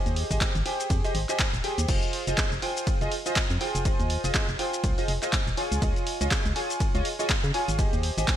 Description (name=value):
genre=piano house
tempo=122 BPM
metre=4/4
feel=swing 58% on 16ths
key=unclear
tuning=A4 = 444 Hz
part: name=clear concert grand piano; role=riff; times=0.0-8.4 s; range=F4 to Ab5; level=-30 LUFS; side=right 1 dB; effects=analog chorus, sidechain pumping, ping-pong delay
part: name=organ-like FM bass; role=bass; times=0.1-8.3 s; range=Eb1 to Db3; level=-28 LUFS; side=equal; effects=sidechain pumping
part: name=punchy analog drum machine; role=drums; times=0.1-8.4 s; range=crash cymbal, handclaps, hi-hat, ride cymbal, shaker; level=-30 LUFS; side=equal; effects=gated reverb
part: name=electronic kick drum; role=drums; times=0.3-8.4 s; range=none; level=-27 LUFS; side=equal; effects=none
room=light reverb, digital ambience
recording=bright 1980s-style digital production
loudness=-24 LUFS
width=side -11 dB against mid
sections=0.0-8.4 A section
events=none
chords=0.0 Abmaj7; 5.6 Dbadd9; 7.8 Abmaj7